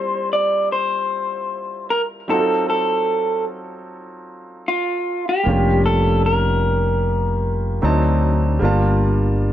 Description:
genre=R&B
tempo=76 BPM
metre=4/4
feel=swing 55% on 16ths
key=F major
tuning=A4 = 444 Hz
part: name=electric guitar through a small old amp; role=melody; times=0.0-9.5 s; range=F4 to D5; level=-20 LUFS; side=equal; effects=plate reverb
part: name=clear baby grand piano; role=accompaniment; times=0.0-9.5 s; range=Gb3 to A5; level=-24 LUFS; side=right 1 dB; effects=plate reverb
part: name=sustaining fretless electric bass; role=bass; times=5.5-9.5 s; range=F1 to D2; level=-18 LUFS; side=left 1 dB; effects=lush chorus
room=light reverb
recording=dark, warm production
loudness=-17 LUFS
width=side -11 dB against mid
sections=0.0-9.5 A section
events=none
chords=0.0 Fmaj9; 2.3 F7b9; 5.5 Bbm6/F; 7.8 D7b9; 8.6 Gm9

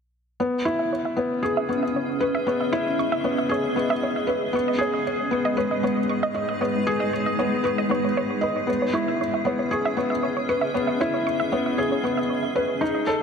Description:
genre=electronica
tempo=116 BPM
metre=4/4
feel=straight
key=C# minor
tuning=A4 = 441 Hz
part: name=granular cloud pad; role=sustained chords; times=1.4-13.2 s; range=G#3 to E5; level=-27 LUFS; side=equal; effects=built-in reverb
part: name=wide unison pluck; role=arpeggios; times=0.4-13.2 s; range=B4 to C#6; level=-29 LUFS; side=right 3 dB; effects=ping-pong delay
part: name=felt-muted upright piano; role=riff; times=0.4-13.2 s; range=B3 to D#5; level=-24 LUFS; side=left 1 dB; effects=ping-pong delay
room=moderate huge ambient reverb, RT60 4.1 s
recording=none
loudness=-21 LUFS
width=side -6 dB against mid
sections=0.4-13.2 A section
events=none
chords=0.4 C#m7; 4.5 G#m; 8.7 C#m7

